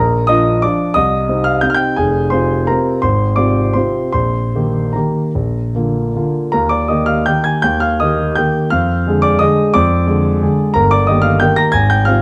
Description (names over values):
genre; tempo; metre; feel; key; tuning
classical, piano waltz; 147-190 BPM; 3/4; rubato; Eb major; A4 = 438 Hz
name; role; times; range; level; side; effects
warm grand piano; solo; 0.0-12.2 s; F1 to Bb6; -15 LUFS; equal; none
room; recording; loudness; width
moderate recital hall reverb, RT60 1.4 s; close, detailed microphones; -15 LUFS; mono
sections
0.0-6.5 A section; 6.5-12.2 B section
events
none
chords
0.0 Bb; 1.0 Cm; 2.0 Fm; 3.0 Fm/Ab; 4.1 Eb/Bb; 5.3 Bb; 6.5 Eb; 8.7 Ddim/F; 10.8 Eb/G